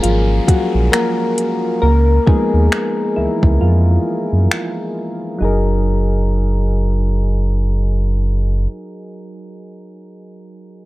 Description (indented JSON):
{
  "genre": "contemporary R&B",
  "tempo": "67 BPM",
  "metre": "4/4",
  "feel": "swing 58% on 16ths",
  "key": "F# major",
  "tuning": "A4 = 440 Hz",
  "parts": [
    { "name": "soft electric-piano-like synth keys", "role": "accompaniment", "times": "0.0-10.9 s", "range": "E3 to D5", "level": "-19 LUFS", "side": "left 1 dB", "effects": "chorus, low-pass filter" },
    { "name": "sub bass with octave", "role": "bass", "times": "0.0-8.7 s", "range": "F#1 to F#2", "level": "-14 LUFS", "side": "equal", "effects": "none" },
    { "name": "smooth R&B drum kit", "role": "drums", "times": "0.0-4.8 s", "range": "finger snaps, hi-hat, kick drum", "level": "-15 LUFS", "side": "equal", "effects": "none" },
    { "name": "downlifter", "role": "sound effects", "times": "0.0-5.4 s", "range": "none", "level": "-36 LUFS", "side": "equal", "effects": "none" }
  ],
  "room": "digital ambience",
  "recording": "dry, gritty hardware recording",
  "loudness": "-14 LUFS",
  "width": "side -18 dB against mid",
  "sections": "0.0-5.4 A section; 5.4-9.0 B section",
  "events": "synth keys solo 0.0-5.4; filter sweep on synth keys 0.0-5.4; break 3.6-5.4",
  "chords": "0.0 D#m11 (rootless); 1.8 C#9; 5.4 F#69"
}